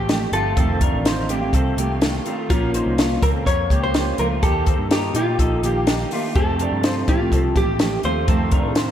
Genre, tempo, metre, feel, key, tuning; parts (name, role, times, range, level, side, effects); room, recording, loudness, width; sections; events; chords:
jangly indie pop; 124 BPM; 4/4; straight; F mixolydian; A4 = 441 Hz
vintage hollow-body jazz guitar; melody; 0.0-8.7 s; F4 to Db5; -24 LUFS; left 1 dB
fingerpicked steel-string acoustic guitar; accompaniment; 0.0-8.9 s; F2 to G4; -25 LUFS; right 3 dB; slapback echo
electric guitar through a small old amp; arpeggios; 0.0-8.9 s; A3 to Db5; -27 LUFS; left 1 dB; ensemble chorus, slapback echo
vintage muted picked electric bass; bass; 0.0-8.9 s; F1 to Bb2; -24 LUFS; equal
compact cocktail drum kit; drums; 0.1-8.9 s; hi-hat, kick drum, snare drum; -21 LUFS; equal
light reverb, small room ambience; -17 LUFS; side -10 dB against mid
0.0-8.9 A section
0.0 Fadd9; 0.6 F7; 2.5 Bbm; 4.4 Eb; 6.4 Fadd9; 8.3 F7